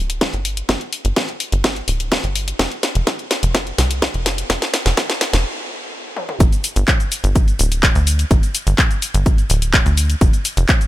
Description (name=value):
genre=progressive house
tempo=126 BPM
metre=4/4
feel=straight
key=unclear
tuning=A4 = 440 Hz
part: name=tight sequencer bass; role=bass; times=0.0-10.7 s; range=D1 to D2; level=-18 LUFS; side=equal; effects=tube saturation, sidechain pumping
part: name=house drum kit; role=drums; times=0.1-10.9 s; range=handclaps, hi-hat, shaker, snare drum, toms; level=-20 LUFS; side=left 1 dB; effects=sidechain pumping on perc, high-pass filter on perc, high-pass filter on snare, sidechain pumping on hats, high-pass filter on hats, sidechain pumping on toms, high-pass filter on toms, high-pass filter on room
part: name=electronic kick drum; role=drums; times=0.2-10.8 s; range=none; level=-16 LUFS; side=equal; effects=high-pass filter on kick, high-pass filter on room
room=little or no reverb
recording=none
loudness=-15 LUFS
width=side -15 dB against mid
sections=0.0-6.4 A section; 6.4-10.9 B section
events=build-up 0.0-6.4; drum fill 0.0-5.5, 6.2; stop 5.5-6.4; drop 6.4-10.9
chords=none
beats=0.21 | 0.69 1.17 1.64 2.12 | 2.59 3.07 3.55 4.02 | 4.50 4.97 5.45 5.93 | 6.40 6.88 7.36 7.83 | 8.31 8.78 9.26 9.74 | 10.21 10.69